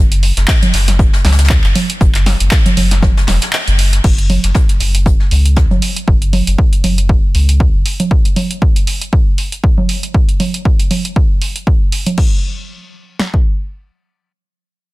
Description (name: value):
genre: acid house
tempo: 118 BPM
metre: 4/4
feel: swing 56% on 16ths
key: unclear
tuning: A4 = 440 Hz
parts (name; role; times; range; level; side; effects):
- warm sub bass; bass; 0.0-7.8 s; E1 to C#2; -13 LUFS; equal; sidechain pumping
- punchy analog drum machine; drums; 0.1-12.3 s; congas, crash cymbal, handclaps, hi-hat, snare drum; -18 LUFS; right 2 dB; none
- soft brush drum kit; drums; 0.2-6.0 s; hi-hat, snare drum; -26 LUFS; left 3 dB; sidechain pumping on hats, high-pass filter on hats, soft clipping on snare, high-pass filter on snare, high-pass filter on room
- punchy analog drum machine; drums; 0.5-13.4 s; kick drum, snare drum; -12 LUFS; equal; none
room: little or no reverb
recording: dense, heavily limited modern master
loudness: -10 LUFS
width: side -20 dB against mid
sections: 0.0-4.0 A section; 4.0-12.2 B section; 12.2-14.9 C section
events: drop 0.0-4.0; kick drops out 3.5-4.0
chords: none